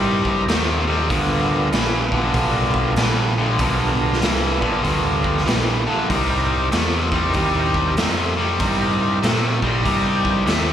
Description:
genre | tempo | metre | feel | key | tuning
blues rock power trio and southern rock | 96 BPM | 4/4 | swing 64% on 8ths | unclear | A4 = 440 Hz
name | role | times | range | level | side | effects
overdriven tonewheel organ | sustained chords | 0.0-10.7 s | B3 to C6 | -26 LUFS | right 4 dB | slow rotary speaker, chorus vibrato
overdriven electric guitar | riff | 0.0-10.7 s | G2 to A3 | -20 LUFS | left 2 dB | slapback echo
overdriven picked electric bass | bass | 0.0-10.7 s | A#1 to Bb2 | -23 LUFS | equal | none
raw garage drum kit | drums | 0.3-10.7 s | hi-hat, kick drum, snare drum | -23 LUFS | equal | none
room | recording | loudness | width
light reverb | live gig heard through the venue's PA, club reverb | -17 LUFS | side -10 dB against mid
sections
0.0-10.7 A section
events
tonewheel organ fill 0.0-1.1, 9.2-10.7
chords
0.0 C7#9; 1.1 G7#9; 6.1 C7#9

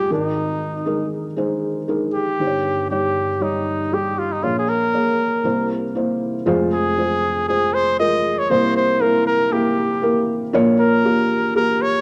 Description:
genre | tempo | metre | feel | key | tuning
pop | 118 BPM | 4/4 | swing 56% on 16ths | F minor | A4 = 440 Hz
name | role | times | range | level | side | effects
warm trumpet | melody | 0.0-12.0 s | Eb4 to Eb5 | -23 LUFS | equal | cassette tape
felt-muted upright piano | accompaniment | 0.0-12.0 s | F1 to Db5 | -22 LUFS | equal | cassette tape
room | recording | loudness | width
moderate spring reverb, RT60 2.4 s | home recording on cassette | -19 LUFS | mono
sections
0.0-6.5 A section; 6.5-12.0 B section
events
none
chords
0.1 Absus2; 2.4 Eb7/G; 4.4 Bbm7; 5.4 C7; 6.5 Fm; 8.5 C7; 10.5 Bbm

